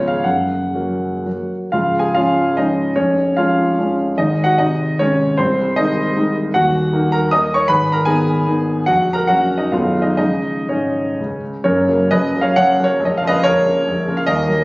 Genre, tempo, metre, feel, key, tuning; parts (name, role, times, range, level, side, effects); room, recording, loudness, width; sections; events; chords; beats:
classical, romantic triple-time dance for piano with dotted rhythms; 113-169 BPM; 3/4; rubato; Db major, F# major from 6.5 s; A4 = 440 Hz
warm grand piano; solo; 0.0-14.6 s; A#0 to D#6; -14 LUFS; equal
wet stone room reverb, RT60 1.0 s; recorded on a phone in the room, studio reverb, compression, nothing above 7.5 kHz; -14 LUFS; side -23 dB against mid
0.0-1.7 A section; 1.7-11.7 B section; 11.7-14.6 A section
0.2 F#; 1.7 Db; 3.0 Db/F; 4.2 Ab; 5.4 Ab/C; 6.5 D#m; 7.7 G#m; 8.9 F#/A#; 9.7 B; 10.2 C#; 11.7 F#; 13.0 A#m
| 0.25 0.74 1.26 | 1.74 2.16 2.58 | 2.96 3.36 3.78 | 4.18 4.59 5.00 | 5.38 5.77 6.16 | 6.54 6.92 7.31 | 7.67 8.06 8.47 | 8.87 9.28 9.73 | 10.18 10.68 11.19 | 11.66 12.11 12.56 | 12.99 13.43 13.87 | 14.26